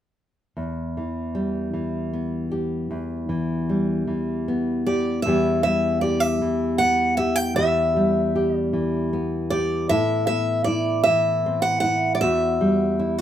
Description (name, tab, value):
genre	acoustic folk duo or small band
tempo	52 BPM (dotted quarters)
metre	6/8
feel	straight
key	E minor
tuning	A4 = 439 Hz
part	nylon-string guitar	accompaniment	0.6-13.2 s	E2 to G4	-22 LUFS	equal	none
part	picked steel-string acoustic guitar	melody	4.9-13.2 s	D5 to G5	-22 LUFS	equal	none
room	light reverb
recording	rough home demo mix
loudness	-20 LUFS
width	side -10 dB against mid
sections	0.6-5.2 A section; 5.2-13.2 B section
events	none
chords	0.6 Em; 9.9 Amadd9; 12.2 Emadd9